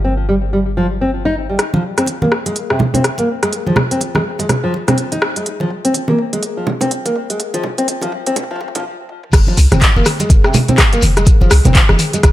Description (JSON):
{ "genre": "afro house", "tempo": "124 BPM", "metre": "4/4", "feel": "swing 60% on 16ths", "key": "F minor", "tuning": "A4 = 444 Hz", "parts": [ { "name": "nylon-string guitar", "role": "arpeggios", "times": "0.0-12.2 s", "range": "C3 to Eb4", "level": "-18 LUFS", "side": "left 1 dB", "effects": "sidechain pumping, low-pass filter, ping-pong delay" }, { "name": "warm 808-style bass", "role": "bass", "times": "0.0-1.6, 9.3-12.3 s", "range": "F1 to C2", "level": "-15 LUFS", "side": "equal", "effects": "sidechain pumping" }, { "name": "afro-pop drum kit", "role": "drums", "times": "1.6-12.3 s", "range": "crash cymbal, handclaps, hi-hat, rim click, toms", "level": "-17 LUFS", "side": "equal", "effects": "high-pass filter on snare, low-pass filter on snare, high-pass filter on hats, low-pass filter on hats, high-pass filter on toms, low-pass filter on toms, high-pass filter on cymbals, low-pass filter on cymbals" }, { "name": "congas", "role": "percussion", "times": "1.7-12.2 s", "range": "none", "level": "-18 LUFS", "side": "right 2 dB", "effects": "none" }, { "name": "electronic kick drum", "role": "drums", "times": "9.3-12.3 s", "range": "none", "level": "-11 LUFS", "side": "equal", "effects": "none" }, { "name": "shekere", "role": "percussion", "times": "9.3-12.3 s", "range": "none", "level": "-26 LUFS", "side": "left 6 dB", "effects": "none" } ], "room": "light reverb, small room ambience", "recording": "high-pass filter", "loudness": "-12 LUFS", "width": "side -14 dB against mid", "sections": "0.0-1.6 A section; 1.6-9.3 B section; 9.3-12.3 C section", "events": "build-up 1.6-9.3; drum fill 1.6-8.8, 9.1; filter sweep on nylon-string guitar 1.6-9.3; filter sweep 1.6-9.3; stop 8.8-9.3; drop 9.3-12.3", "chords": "0.0 N.C.; 1.6 Fm; 9.3 F5" }